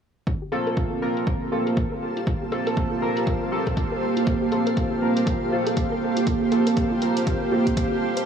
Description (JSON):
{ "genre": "deep house", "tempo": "120 BPM", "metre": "4/4", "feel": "swing 60% on 16ths", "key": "G minor", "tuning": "A4 = 440 Hz", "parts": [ { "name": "deep dark ambient pad", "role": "sustained chords", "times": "1.7-8.3 s", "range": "Bb3 to A5", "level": "-26 LUFS", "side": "right 4 dB", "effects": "chorus, built-in reverb, vintage 12-bit sampler grit, sidechain pumping" }, { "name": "soft round pluck", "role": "arpeggios", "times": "0.3-8.2 s", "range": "F4 to C5", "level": "-32 LUFS", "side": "left 2 dB", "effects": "none" }, { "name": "electronic hi-hat", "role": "drums", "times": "0.3-8.2 s", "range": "none", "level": "-38 LUFS", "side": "right 1 dB", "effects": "overdrive, low-pass filter on hats" }, { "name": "electronic kick drum", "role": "drums", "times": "0.3-7.9 s", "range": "none", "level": "-26 LUFS", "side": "equal", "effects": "overdrive" }, { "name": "granular cloud pad", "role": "texture", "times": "1.5-8.3 s", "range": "G4 to A5", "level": "-30 LUFS", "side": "equal", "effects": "built-in reverb, sidechain pumping" }, { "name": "chorused polysynth", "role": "stabs", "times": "0.5-7.8 s", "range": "Bb3 to Bb4", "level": "-25 LUFS", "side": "equal", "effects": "cassette tape, sidechain pumping, tape echo" } ], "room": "wet huge ambient reverb, RT60 7.8 s", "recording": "dreamy mix soaked in reverb, small room ambience", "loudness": "-21 LUFS", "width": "side -7 dB against mid", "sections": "0.3-8.3 A section", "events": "none", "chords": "0.3 Gm11" }